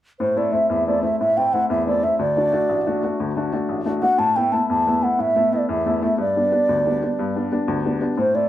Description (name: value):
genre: celtic folk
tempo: 120 BPM (dotted quarters)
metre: 12/8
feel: straight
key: A dorian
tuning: A4 = 440 Hz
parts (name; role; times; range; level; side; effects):
- mellow hollow baroque flute; melody; 0.2-8.5 s; C5 to A5; -19 LUFS; right 1 dB; plate reverb
- clear upright piano; accompaniment; 0.2-8.5 s; A1 to F#4; -22 LUFS; left 2 dB; none
room: moderate studio reverb, RT60 0.5 s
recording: none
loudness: -18 LUFS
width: side -12 dB against mid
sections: 0.2-8.5 A section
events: none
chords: 0.2 Am; 2.2 D; 4.2 Asus2; 6.2 G